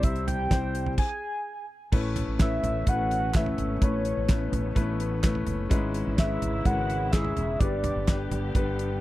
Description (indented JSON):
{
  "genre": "piano-driven pop",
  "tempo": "127 BPM",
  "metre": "4/4",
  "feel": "straight",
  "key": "A major",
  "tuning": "A4 = 440 Hz",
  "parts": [
    { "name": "soft octave-layered synth lead", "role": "melody", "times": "0.0-8.5 s", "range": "C#5 to G#5", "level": "-31 LUFS", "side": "equal", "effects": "chorus" },
    { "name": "warm upright piano", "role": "accompaniment", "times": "0.0-9.0 s", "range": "G2 to C5", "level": "-30 LUFS", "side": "left 4 dB", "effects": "none" },
    { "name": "muted studio string section", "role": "sustained chords", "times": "0.0-9.0 s", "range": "B2 to G4", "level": "-39 LUFS", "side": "right 1 dB", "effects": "none" },
    { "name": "mellow fretless electric bass", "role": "bass", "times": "0.0-9.0 s", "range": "E1 to C2", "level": "-31 LUFS", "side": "equal", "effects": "none" },
    { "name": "damped 70s drum kit", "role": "drums", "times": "0.0-8.9 s", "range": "crash cymbal, hi-hat, kick drum, snare drum, toms", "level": "-26 LUFS", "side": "right 1 dB", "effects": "none" },
    { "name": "group handclap", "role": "percussion", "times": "2.4-8.2 s", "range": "none", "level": "-42 LUFS", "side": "right 6 dB", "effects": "none" }
  ],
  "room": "little or no reverb",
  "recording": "dry, close 1970s-style studio recording",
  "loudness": "-24 LUFS",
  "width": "side -16 dB against mid",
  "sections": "0.0-1.9 A section; 1.9-9.0 B section",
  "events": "stop 1.0-1.9",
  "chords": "0.0 C; 1.0 N.C.; 1.9 Aadd9; 5.7 E6/G#; 7.6 G",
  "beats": "| 0.04 0.51 0.98 1.46 | 1.93 2.40 2.88 3.35 | 3.82 4.29 4.77 5.24 | 5.71 6.19 6.66 7.13 | 7.61 8.08 8.55"
}